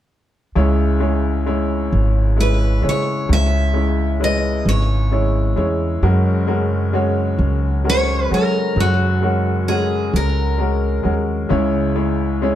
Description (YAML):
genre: acoustic folk-pop ballad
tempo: 44 BPM (dotted quarters)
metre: 6/8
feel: straight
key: C# dorian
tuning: A4 = 439 Hz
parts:
  - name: bright upright piano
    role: accompaniment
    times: 0.6-12.6 s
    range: F#1 to C#5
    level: -20 LUFS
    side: left 2 dB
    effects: none
  - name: upright bass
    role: bass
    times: 0.6-12.6 s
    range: G#1 to F#3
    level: -18 LUFS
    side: equal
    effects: none
  - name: picked steel-string acoustic guitar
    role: melody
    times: 2.4-11.1 s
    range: F#4 to E5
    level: -22 LUFS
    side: equal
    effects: slapback echo
room: light reverb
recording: dark, warm production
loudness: -16 LUFS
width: side -12 dB against mid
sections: 0.6-12.6 A section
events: none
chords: 0.6 C#m; 6.0 F#add9; 11.5 C#m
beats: | 0.56 1.93 | 3.29 4.66 | 6.03 7.40 | 8.77 10.13 | 11.51